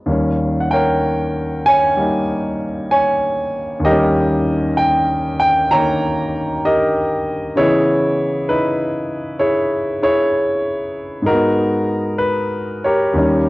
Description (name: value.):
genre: solo jazz.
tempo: 64 BPM.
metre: 4/4.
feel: swing 68% on 8ths, rubato.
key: unclear.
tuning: A4 = 441 Hz.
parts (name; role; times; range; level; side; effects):
clear concert grand piano; solo; 0.0-13.5 s; D#2 to A#5; -15 LUFS; equal; cassette tape.
room: light reverb, studio reverb.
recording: home recording on cassette.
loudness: -15 LUFS.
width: side -20 dB against mid.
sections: 0.0-13.5 A section.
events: none.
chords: 0.1 D#7; 7.6 C#m9; 11.3 G#m9.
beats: | 0.08 1.03 1.98 2.91 | 3.85 4.79 5.72 6.66 | 7.58 8.50 9.42 10.34 | 11.28 12.21 13.16.